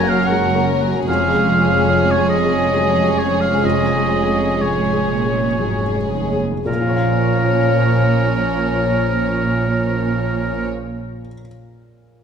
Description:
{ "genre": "cinematic, emotional film score for orchestra", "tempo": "55-77 BPM", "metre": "3/4", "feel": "rubato", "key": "Bb minor", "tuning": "A4 = 441 Hz", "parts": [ { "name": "dark studio violin section", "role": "melody", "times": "0.0-10.7 s", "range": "Ab4 to Db5", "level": "-25 LUFS", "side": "left 4 dB", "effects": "none" }, { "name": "clear oboe", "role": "second line", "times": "0.0-10.7 s", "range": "Bb4 to Ab5", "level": "-22 LUFS", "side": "right 2 dB", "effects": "none" }, { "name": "dark studio violin section", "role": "second line", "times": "0.0-10.7 s", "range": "Db4", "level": "-24 LUFS", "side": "left 1 dB", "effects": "none" }, { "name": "dark studio viola section", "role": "accompaniment", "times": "0.0-10.7 s", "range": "F3 to Ab3", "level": "-24 LUFS", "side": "right 5 dB", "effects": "none" }, { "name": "felt-muted upright piano", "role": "accompaniment", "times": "0.0-12.2 s", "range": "F2 to F5", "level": "-26 LUFS", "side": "left 1 dB", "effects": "none" }, { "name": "concert harp", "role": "arpeggios", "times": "0.0-11.5 s", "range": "F2 to Ab5", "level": "-25 LUFS", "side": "left 8 dB", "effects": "none" }, { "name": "warm studio cello section", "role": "bass", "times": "0.0-10.7 s", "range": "Eb2 to Bb2", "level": "-24 LUFS", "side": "right 3 dB", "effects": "none" }, { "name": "warm studio double bass section", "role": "bass", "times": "0.0-10.7 s", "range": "F1 to Bb1", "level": "-23 LUFS", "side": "right 4 dB", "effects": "none" } ], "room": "moderate scoring stage reverb, RT60 2.1 s", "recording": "none", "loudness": "-15 LUFS", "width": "side -7 dB against mid", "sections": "0.0-6.7 A section; 6.7-9.9 B section", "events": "slowing down 0.0-6.7", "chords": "0.0 Gb; 1.1 Db/F; 6.7 Bbm", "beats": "0.29 | 1.08 1.89 2.74 | 3.63 4.59 5.60 | 6.67 7.75 8.82" }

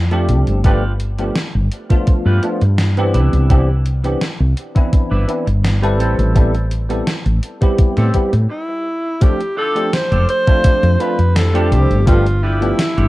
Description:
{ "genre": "vaporwave", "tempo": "84 BPM", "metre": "4/4", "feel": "straight", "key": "unclear", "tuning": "A4 = 441 Hz", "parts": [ { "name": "woody fretless electric bass", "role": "bass", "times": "0.0-13.1 s", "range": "F1 to A2", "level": "-14 LUFS", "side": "equal", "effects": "tube saturation" }, { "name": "bell-like tine electric piano", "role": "accompaniment", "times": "0.1-12.8 s", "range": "E3 to B4", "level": "-21 LUFS", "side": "equal", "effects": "medium stereo tremolo, ensemble chorus, vintage 12-bit sampler grit, tape echo" }, { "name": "clean electric guitar", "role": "riff", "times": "0.1-13.1 s", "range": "C4 to B4", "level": "-28 LUFS", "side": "equal", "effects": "analog chorus, tape echo" }, { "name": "gated 80s digital drum machine", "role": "drums", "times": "0.1-13.1 s", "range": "hi-hat, snare drum", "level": "-23 LUFS", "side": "equal", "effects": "gated reverb, gated reverb snare" }, { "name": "electronic kick drum", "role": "drums", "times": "0.6-12.2 s", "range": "none", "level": "-12 LUFS", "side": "equal", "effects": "none" }, { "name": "breathy alto saxophone", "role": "melody", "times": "8.5-13.1 s", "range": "E4 to C5", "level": "-18 LUFS", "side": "equal", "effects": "tape echo" }, { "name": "warbly tape-like pad", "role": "sustained chords", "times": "9.2-13.1 s", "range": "F3 to G4", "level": "-30 LUFS", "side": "right 2 dB", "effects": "none" } ], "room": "digital ambience", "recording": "rough home demo mix, cassette tape", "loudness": "-13 LUFS", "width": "side -18 dB against mid", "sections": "0.0-9.2 A section; 9.2-13.1 B section", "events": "break 8.5-9.2", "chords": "0.0 F69; 0.6 G7; 3.1 Cmaj9; 6.0 Am7; 9.2 F69; 12.1 G7", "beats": "| 0.65 1.36 2.07 2.79 | 3.50 4.22 4.93 5.64 | 6.36 7.07 7.79 8.50 | 9.22 9.93 10.64 11.36 | 12.07 12.79" }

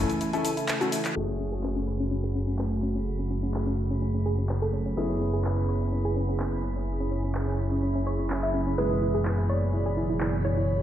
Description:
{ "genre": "progressive house", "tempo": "126 BPM", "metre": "4/4", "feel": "straight", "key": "F# minor", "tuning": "A4 = 440 Hz", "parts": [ { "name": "warm analog pad", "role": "sustained chords", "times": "0.0-10.8 s", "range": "B2 to G#4", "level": "-32 LUFS", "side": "right 1 dB", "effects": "chorus" }, { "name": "felt-muted upright piano", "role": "stabs", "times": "0.0-10.8 s", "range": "G#3 to A4", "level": "-33 LUFS", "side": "left 2 dB", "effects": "low-pass filter, tape echo" }, { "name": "fat analog bass", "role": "bass", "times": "0.0-10.8 s", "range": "F#1", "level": "-28 LUFS", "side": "equal", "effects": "none" }, { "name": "drifting glass-harmonics texture", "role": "texture", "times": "0.0-10.8 s", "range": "G#5 to B6", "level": "-44 LUFS", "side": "left 2 dB", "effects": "chorus, built-in reverb" }, { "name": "soft round pluck", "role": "arpeggios", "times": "0.1-10.6 s", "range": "C#4 to E5", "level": "-32 LUFS", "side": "equal", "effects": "chorus, tape echo" }, { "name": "house drum kit", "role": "drums", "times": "0.1-10.8 s", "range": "handclaps, hi-hat, shaker", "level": "-36 LUFS", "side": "equal", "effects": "low-pass filter on hats, studio reverb, low-pass filter on perc, low-pass filter on snare" }, { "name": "plucky unison lead", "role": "melody", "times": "8.8-10.8 s", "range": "B4 to D5", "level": "-32 LUFS", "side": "right 2 dB", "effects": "dub echo" } ], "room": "light reverb", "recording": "played on a big sound system in a bare room, stone room reverb, low-pass filter", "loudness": "-25 LUFS", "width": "side -11 dB against mid", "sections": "0.0-1.2 A section; 1.2-10.8 B section", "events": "drum fill 0.7-1.2; band accent 1.0; filter sweep on synth pluck 1.2-10.8; filter sweep on felt piano 1.2-10.8; filter sweep on analog synth pad 1.2-10.8", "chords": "0.0 A; 1.2 F#madd9; 5.0 C#m7/F#", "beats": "0.21 0.69 | 1.16 1.64 2.11 2.59 | 3.07 3.54 4.02 4.49 | 4.97 5.45 5.92 6.40 | 6.88 7.35 7.83 8.30 | 8.78 9.26 9.73 10.21 | 10.69" }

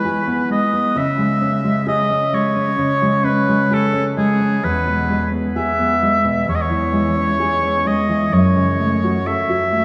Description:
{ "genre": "romantic duo for oboe and classical guitar", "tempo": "65 BPM", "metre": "4/4", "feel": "rubato", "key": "unclear", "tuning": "A4 = 440 Hz", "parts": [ { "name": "clear oboe", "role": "melody", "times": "0.0-9.8 s", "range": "G#4 to E5", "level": "-21 LUFS", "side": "equal", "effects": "none" }, { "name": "nylon-string guitar", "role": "accompaniment", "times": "0.0-9.8 s", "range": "E2 to A4", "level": "-20 LUFS", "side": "equal", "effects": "none" } ], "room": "wet cathedral reverb, RT60 5.7 s", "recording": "in a vast, echoing space, small room ambience", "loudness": "-18 LUFS", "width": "mono", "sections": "0.0-9.8 A section", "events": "none", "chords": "0.0 E; 1.0 C#m; 4.6 E; 6.5 C#m/E; 8.3 F#m", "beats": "0.04 | 0.96 1.87 2.79 3.71 | 4.63 5.56 6.49 7.40 | 8.33 9.27" }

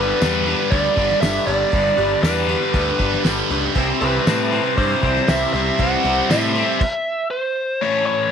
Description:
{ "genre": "classic rock", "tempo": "118 BPM", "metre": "4/4", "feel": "straight", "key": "unclear", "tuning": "A4 = 441 Hz", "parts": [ { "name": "biting lead guitar", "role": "melody", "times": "0.0-8.3 s", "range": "B4 to F#5", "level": "-21 LUFS", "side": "right 1 dB", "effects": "overdrive, slapback echo" }, { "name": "picked acoustic archtop guitar", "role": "accompaniment", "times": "0.0-6.8 s", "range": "C3 to C5", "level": "-28 LUFS", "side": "right 1 dB", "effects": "none" }, { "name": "cranked stack guitar", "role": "riff", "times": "0.0-8.3 s", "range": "G2 to E4", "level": "-22 LUFS", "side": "left 12 dB", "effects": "overdrive, phaser" }, { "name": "overdriven electric guitar", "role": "riff", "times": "0.0-6.8 s", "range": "C3 to C5", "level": "-24 LUFS", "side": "right 15 dB", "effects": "phaser" }, { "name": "fuzz picked electric bass", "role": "bass", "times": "0.0-6.6 s", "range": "G1 to A2", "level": "-24 LUFS", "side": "equal", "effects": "overdrive" }, { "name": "cloth-damped thuddy drum kit", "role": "drums", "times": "0.2-6.9 s", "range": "crash cymbal, hi-hat, kick drum, snare drum", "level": "-23 LUFS", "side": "equal", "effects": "none" }, { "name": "tambourine", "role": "percussion", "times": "0.2-6.4 s", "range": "none", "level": "-36 LUFS", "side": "left 16 dB", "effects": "none" } ], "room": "light reverb, small room ambience", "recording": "1960s-style stereo with parts hard left and right", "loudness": "-16 LUFS", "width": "side -7 dB against mid", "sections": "0.0-7.8 A section", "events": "stop 6.8-7.8", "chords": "0.0 G; 3.8 C", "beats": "0.21 0.72 1.23 | 1.73 2.24 2.75 3.26 | 3.76 4.27 4.78 5.29 | 5.79 6.30 6.81 7.32 | 7.82" }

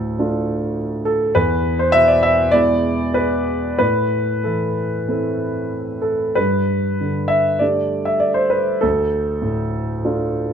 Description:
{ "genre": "neoclassical minimalist piano", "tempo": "96 BPM", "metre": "4/4", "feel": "uneven beats, rubato", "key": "A minor", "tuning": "A4 = 440 Hz", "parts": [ { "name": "warm concert grand piano", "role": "solo", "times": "0.0-10.5 s", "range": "D2 to E5", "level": "-16 LUFS", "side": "equal", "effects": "none" } ], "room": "moderate studio reverb, RT60 0.8 s", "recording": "none", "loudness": "-16 LUFS", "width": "side -8 dB against mid", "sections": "0.0-10.5 A section", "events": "none", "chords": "0.0 Dm; 1.4 E; 3.8 Am; 6.4 Gadd9; 8.8 Dm", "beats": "0.17 0.77 | 1.36 1.95 2.55 3.16 | 3.80 4.45 5.09 5.72 | 6.37 7.00 7.61 8.23 | 8.83 9.44 10.03" }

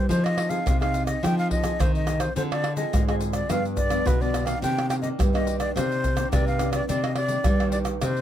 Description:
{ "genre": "samba and choro", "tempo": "106 BPM", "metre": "4/4", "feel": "straight", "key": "C minor", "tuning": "A4 = 440 Hz", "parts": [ { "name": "breathy mellow silver concert flute", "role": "melody", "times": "0.0-8.2 s", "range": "B4 to G5", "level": "-28 LUFS", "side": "left 1 dB", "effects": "none" }, { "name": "nylon-string guitar", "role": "accompaniment", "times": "0.0-8.2 s", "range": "G2 to Ab4", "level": "-30 LUFS", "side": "equal", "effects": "none" }, { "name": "nylon-string guitar", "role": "bass", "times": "0.0-8.2 s", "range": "G2 to G3", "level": "-27 LUFS", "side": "left 1 dB", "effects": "none" }, { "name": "egg shaker, surdo, pandeiro and tamborim", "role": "percussion", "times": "0.1-8.2 s", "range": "none", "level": "-26 LUFS", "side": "equal", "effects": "none" } ], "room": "little or no reverb", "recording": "close, detailed microphones", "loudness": "-22 LUFS", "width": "side -11 dB against mid", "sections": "0.0-8.2 A section", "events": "none", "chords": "0.1 Fm7; 2.4 Dm7b5; 3.5 G7; 4.6 Cm9", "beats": "| 0.10 0.67 1.23 1.80 | 2.36 2.93 3.50 4.06 | 4.63 5.19 5.76 6.32 | 6.89 7.45 8.02" }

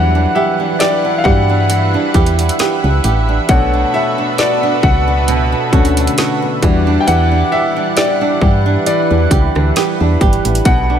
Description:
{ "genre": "contemporary R&B", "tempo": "67 BPM", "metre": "4/4", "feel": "swing 54% on 16ths", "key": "unclear", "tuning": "A4 = 440 Hz", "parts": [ { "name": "clear grand piano", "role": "accompaniment", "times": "0.0-11.0 s", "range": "D3 to G5", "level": "-17 LUFS", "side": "left 4 dB", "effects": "none" }, { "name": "lush unison pad", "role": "sustained chords", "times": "0.0-11.0 s", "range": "E3 to F#5", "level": "-19 LUFS", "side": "equal", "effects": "chorus" }, { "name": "flamenco guitar", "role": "arpeggios", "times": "0.0-11.0 s", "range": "B2 to G4", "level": "-19 LUFS", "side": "right 10 dB", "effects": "digital delay" }, { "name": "solid FM bass", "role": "bass", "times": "0.0-11.0 s", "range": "G1 to G2", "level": "-14 LUFS", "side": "equal", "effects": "none" }, { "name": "trap drum kit", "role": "drums", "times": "0.8-10.9 s", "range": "hi-hat, kick drum, rim click, snare drum", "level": "-16 LUFS", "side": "equal", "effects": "none" } ], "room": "little or no reverb", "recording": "none", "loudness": "-11 LUFS", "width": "side -9 dB against mid", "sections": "0.0-11.0 A section", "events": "grand piano solo 0.0-11.0", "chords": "0.0 Em7; 3.5 Bm7; 6.6 Em7", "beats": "0.80 1.70 2.60 | 3.49 4.39 5.28 6.18 | 7.07 7.97 8.86 9.76 | 10.65" }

